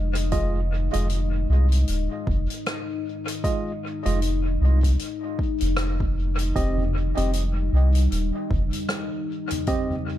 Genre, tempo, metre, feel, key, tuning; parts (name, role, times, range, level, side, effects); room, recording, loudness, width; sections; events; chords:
ambient dub; 77 BPM; 4/4; swing 58% on 16ths; F minor; A4 = 440 Hz
deep dark ambient pad; sustained chords; 0.0-10.2 s; G3 to Eb5; -30 LUFS; left 3 dB; chorus, built-in reverb
soft dub sub bass; bass; 0.0-8.7 s; Eb1 to C2; -21 LUFS; equal
soft-mallet drum kit; drums; 0.2-10.0 s; hi-hat, rim click, toms; -32 LUFS; equal; dub echo
tine electric piano; stabs; 0.3-9.9 s; Ab3 to Eb5; -31 LUFS; right 3 dB; medium stereo tremolo, dub echo
electronic kick drum; drums; 0.3-9.9 s; -27 LUFS; equal; overdrive
small room ambience; echo-heavy mix; -21 LUFS; side -13 dB against mid
0.0-10.2 A section
0.0 Fm7; 6.6 Cm